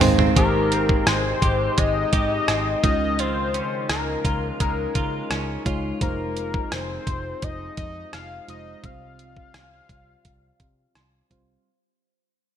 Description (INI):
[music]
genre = 1980s-style pop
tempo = 85 BPM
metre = 4/4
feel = straight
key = Ab major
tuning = A4 = 440 Hz
[part]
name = mellow FM electric piano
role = accompaniment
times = 0.0-11.7 s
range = Ab2 to C6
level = -27 LUFS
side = right 2 dB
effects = chorus
[part]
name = dark French horn section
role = sustained chords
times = 0.0-11.6 s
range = C3 to G4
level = -33 LUFS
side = left 2 dB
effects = none
[part]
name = direct-recorded clean electric guitar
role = riff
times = 0.0-6.6 s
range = Eb3 to G4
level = -30 LUFS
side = right 4 dB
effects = analog chorus, ping-pong delay
[part]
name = vintage muted picked electric bass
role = bass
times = 0.0-11.6 s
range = F1 to Db3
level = -29 LUFS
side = equal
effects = none
[part]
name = clean 12-bit digital drum machine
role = drums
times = 0.0-11.5 s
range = hi-hat, kick drum, rim click, toms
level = -23 LUFS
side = right 1 dB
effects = gated reverb
[part]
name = fat analog lead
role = melody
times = 0.4-11.0 s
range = Bb4 to F5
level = -27 LUFS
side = left 4 dB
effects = ping-pong delay
[sound]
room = moderate lush hall reverb, RT60 2.5 s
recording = bright 1980s-style digital production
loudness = -20 LUFS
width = side -9 dB against mid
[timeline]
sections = 0.4-11.7 A section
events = drum fill 0.0-0.4; FM electric piano fill 0.0-0.4, 10.6-11.7; fade-out 0.4-11.7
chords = 0.4 Abmaj7; 2.8 Dbadd9; 6.0 Fm7; 8.8 Csus4